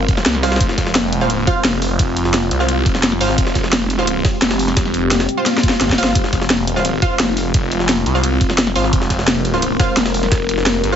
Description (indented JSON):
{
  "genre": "dark technical drum and bass",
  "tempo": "173 BPM",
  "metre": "4/4",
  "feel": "straight",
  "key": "F minor",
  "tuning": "A4 = 440 Hz",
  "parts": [
    { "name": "deep dark ambient pad", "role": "sustained chords", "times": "0.0-11.0 s", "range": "Ab3 to Bb4", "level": "-22 LUFS", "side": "left 1 dB", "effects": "chorus, built-in reverb, sidechain pumping" },
    { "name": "phased detuned saw bass", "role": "bass", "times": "0.0-11.0 s", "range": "F1 to C2", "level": "-20 LUFS", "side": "equal", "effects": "phaser, sidechain pumping" },
    { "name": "drum and bass drum kit", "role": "drums", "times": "0.1-10.9 s", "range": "hi-hat, snare drum", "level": "-18 LUFS", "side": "left 1 dB", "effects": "small room ambience" },
    { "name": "electronic kick drum", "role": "drums", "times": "0.1-10.4 s", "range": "none", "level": "-18 LUFS", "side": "equal", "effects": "small room ambience" },
    { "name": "jungle sampler-style drum kit", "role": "drums", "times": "0.1-11.0 s", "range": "ride cymbal, snare drum", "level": "-25 LUFS", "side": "equal", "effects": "high-pass filter on snare, small room ambience, high-pass filter on cymbals" },
    { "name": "orchestra-hit-like synth stab", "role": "stabs", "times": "0.4-11.0 s", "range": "F4 to F5", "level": "-23 LUFS", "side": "right 2 dB", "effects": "built-in reverb, ping-pong delay" },
    { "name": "swell", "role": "sound effects", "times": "5.6-6.2 s", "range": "none", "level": "-28 LUFS", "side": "equal", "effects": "none" }
  ],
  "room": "light reverb",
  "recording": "heavily compressed radio sound, nothing above 7.8 kHz",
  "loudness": "-14 LUFS",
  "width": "side -8 dB against mid",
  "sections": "0.0-11.0 A section",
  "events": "drum fill 5.5-6.2; swell 5.6-6.2",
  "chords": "0.0 Fm"
}